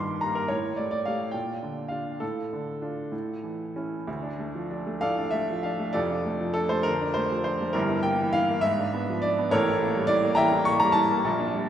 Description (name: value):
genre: classical, romantic character piece for solo piano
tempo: 62-75 BPM (dotted quarters)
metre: 6/8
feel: rubato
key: D minor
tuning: A4 = 439 Hz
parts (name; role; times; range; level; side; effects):
- clear upright piano; solo; 0.0-11.7 s; F1 to D6; -24 LUFS; equal; none
room: wet concert hall reverb, RT60 1.9 s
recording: heard from further back in the room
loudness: -24 LUFS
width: side -10 dB against mid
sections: 0.0-4.1 A section; 4.1-11.7 B section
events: none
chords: 0.0 Eb/G; 0.5 Aaug7; 1.3 Bb; 2.2 Dm/A; 3.1 A; 4.1 Dm; 5.9 Dm/F; 7.7 Edim/G; 8.6 G#dim7; 9.5 A7b9